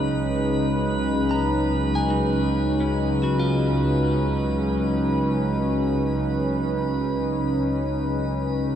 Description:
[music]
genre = ambient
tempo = free time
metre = none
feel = none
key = unclear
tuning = A4 = 435 Hz
[part]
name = warm analog pad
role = sustained chords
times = 0.0-8.8 s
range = Db3 to Cb5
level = -23 LUFS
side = equal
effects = chorus
[part]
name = clear studio double bass section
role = bass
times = 0.0-8.8 s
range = Db2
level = -29 LUFS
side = equal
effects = tube saturation
[part]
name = analog drone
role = drone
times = 0.0-8.8 s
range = Db3 to Ab3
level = -28 LUFS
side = equal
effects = chorus
[part]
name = drifting glass-harmonics texture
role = texture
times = 0.0-8.8 s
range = Cb5 to Cb6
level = -31 LUFS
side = right 1 dB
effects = chorus, built-in reverb
[part]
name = clean electric guitar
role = arpeggios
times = 1.3-5.6 s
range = Db4 to Bb5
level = -32 LUFS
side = equal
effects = tape echo
[sound]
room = wet huge ambient reverb, RT60 7.7 s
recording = dark, warm production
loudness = -20 LUFS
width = side -9 dB against mid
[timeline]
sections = 0.0-8.8 A section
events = none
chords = 0.0 Cbadd9/Db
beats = free time

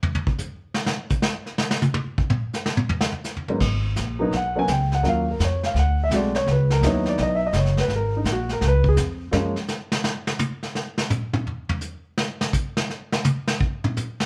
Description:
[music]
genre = jazz piano trio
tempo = 168 BPM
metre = 4/4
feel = swing 65% on 8ths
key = G# minor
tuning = A4 = 436 Hz
[part]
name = vintage brush drum kit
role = drums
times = 0.0-14.3 s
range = brushed snare drum, crash cymbal, hi-hat, kick drum, snare drum, toms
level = -26 LUFS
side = equal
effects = none
[part]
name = warm baby grand piano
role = melody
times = 3.5-9.5 s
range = G#2 to G#5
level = -25 LUFS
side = equal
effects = none
[part]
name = upright bass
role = bass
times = 3.6-9.5 s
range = F#1 to F#2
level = -24 LUFS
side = equal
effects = none
[sound]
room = moderate studio reverb, RT60 0.7 s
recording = band playing live in one room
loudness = -23 LUFS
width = mono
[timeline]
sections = 0.0-3.6 A section; 3.6-14.3 A section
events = grand piano solo 0.0-14.3; drum solo 0.0-3.6, 9.3-14.3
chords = 0.0 N.C.; 3.6 G#m7; 5.0 D#m9; 5.7 D7#11; 6.5 C#m11; 7.9 G#sus2; 8.6 C#; 9.3 N.C.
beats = 0.03 0.39 | 0.75 1.10 1.46 1.82 | 2.17 2.53 2.89 3.25 | 3.60 3.96 4.32 4.68 | 5.03 5.39 5.75 6.11 | 6.46 6.82 7.18 7.54 | 7.89 8.25 8.61 8.96 | 9.32 9.68 10.04 10.39 | 10.75 11.11 11.46 11.82 | 12.18 12.53 12.89 13.25 | 13.60 13.96

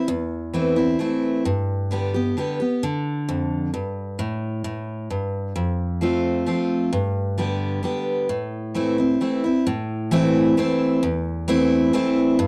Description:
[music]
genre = country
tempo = 132 BPM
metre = 3/4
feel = straight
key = A minor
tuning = A4 = 439 Hz
[part]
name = picked steel-string acoustic guitar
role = solo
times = 0.0-12.5 s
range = E2 to G4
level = -23 LUFS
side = equal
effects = none
[sound]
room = light reverb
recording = dry, close 1970s-style studio recording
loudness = -23 LUFS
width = mono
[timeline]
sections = 0.0-9.7 A section; 9.7-12.5 B section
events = none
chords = 0.0 Am; 1.5 G; 4.2 Gsus2; 5.6 F; 6.9 G; 8.3 Am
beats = | 0.09 0.54 1.00 | 1.46 1.91 2.37 | 2.83 3.28 3.74 | 4.19 4.65 5.11 | 5.56 6.02 6.47 | 6.93 7.39 7.84 | 8.30 8.75 9.21 | 9.66 10.12 10.57 | 11.03 11.48 11.94 | 12.39

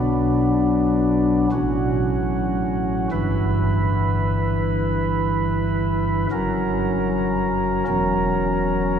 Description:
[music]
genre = classical, chorale-style piece for pipe organ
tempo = 75 BPM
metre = 4/4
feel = rubato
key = unclear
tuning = A4 = 440 Hz
[part]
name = pipe organ, flutes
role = solo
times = 0.0-9.0 s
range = E1 to B4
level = -19 LUFS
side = equal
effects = none
[sound]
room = wet cathedral reverb, RT60 5.6 s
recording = heard from further back in the room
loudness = -19 LUFS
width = side -8 dB against mid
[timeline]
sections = 0.0-9.0 A section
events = none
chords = 0.0 Bm; 1.5 F#m/A; 3.1 Em/G; 6.3 F#; 7.9 F#7/E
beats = 0.71 1.51 2.31 | 3.11 3.92 4.73 5.52 | 6.30 7.09 7.87 8.66

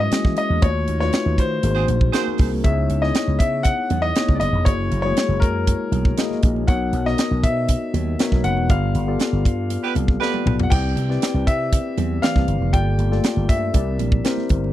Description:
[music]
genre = polished 1980s jazz-funk pop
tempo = 119 BPM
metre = 4/4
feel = straight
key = C major from 10.7 s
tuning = A4 = 439 Hz
[part]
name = clear concert grand piano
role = melody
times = 0.0-14.5 s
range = A#4 to G5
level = -25 LUFS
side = left 2 dB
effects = none
[part]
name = mellow tine electric piano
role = accompaniment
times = 0.0-14.7 s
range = E3 to D#5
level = -24 LUFS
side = left 4 dB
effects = analog chorus
[part]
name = slap bass with an envelope filter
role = bass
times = 0.0-14.7 s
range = E1 to E3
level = -22 LUFS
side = equal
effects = none
[part]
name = tight funk drum kit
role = drums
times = 0.1-14.6 s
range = crash cymbal, hi-hat, kick drum, snare drum, toms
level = -19 LUFS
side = right 1 dB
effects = none
[part]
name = congas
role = percussion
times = 0.1-14.7 s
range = none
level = -33 LUFS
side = right 20 dB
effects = none
[part]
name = mellow horn section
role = second line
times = 1.7-2.5, 9.8-10.6 s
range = B3 to B#4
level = -24 LUFS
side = right 14 dB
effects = none
[sound]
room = little or no reverb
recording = dry, close 1970s-style studio recording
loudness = -17 LUFS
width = side -13 dB against mid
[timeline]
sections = 0.0-10.7 A section; 10.7-14.7 A section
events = band accent 0.6-2.6, 8.7-10.7; drum fill 10.2-10.7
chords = 0.0 E6; 0.6 D#m7b5; 1.6 G#7; 2.6 C#m7; 4.7 F#7; 6.7 Bmaj7; 8.7 G7; 10.7 Cmaj7; 12.7 Gm7; 13.7 C7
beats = 0.12 | 0.62 1.13 1.64 2.14 | 2.65 3.15 3.66 4.16 | 4.67 5.17 5.67 6.18 | 6.68 7.19 7.69 8.20 | 8.70 9.20 9.71 10.21 | 10.72 11.22 11.73 12.23 | 12.73 13.24 13.74 14.25

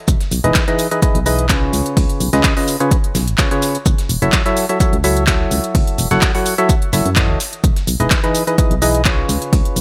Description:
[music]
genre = piano house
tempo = 127 BPM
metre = 4/4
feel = swing 53% on 16ths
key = F# dorian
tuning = A4 = 442 Hz
[part]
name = solid FM bass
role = bass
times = 0.1-9.8 s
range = E1 to F#2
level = -21 LUFS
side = equal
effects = sidechain pumping
[part]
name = dusty soul sampler-style drum kit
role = drums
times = 0.1-9.8 s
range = hi-hat, shaker, snare drum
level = -30 LUFS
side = equal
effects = high-pass filter on snare, studio ambience, high-pass filter on perc, high-pass filter on hats
[part]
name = electronic kick drum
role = drums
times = 0.1-9.6 s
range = none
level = -18 LUFS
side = equal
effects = overdrive, studio ambience
[part]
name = house drum kit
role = drums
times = 0.1-9.8 s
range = handclaps, hi-hat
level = -23 LUFS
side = equal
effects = studio ambience
[part]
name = percussive organ stab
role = riff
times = 0.4-9.8 s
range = C#3 to F#5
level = -20 LUFS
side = equal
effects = chorus, sidechain pumping, digital delay
[sound]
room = light reverb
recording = none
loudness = -16 LUFS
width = mono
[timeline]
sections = 0.0-9.8 A section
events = none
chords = 0.0 Emaj7; 1.7 C#7; 3.9 F#m7; 7.4 Emaj7; 9.3 C#7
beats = | 0.08 0.55 1.02 1.50 | 1.97 2.44 2.91 3.39 | 3.86 4.33 4.80 5.28 | 5.75 6.22 6.69 7.17 | 7.64 8.11 8.58 9.05 | 9.53

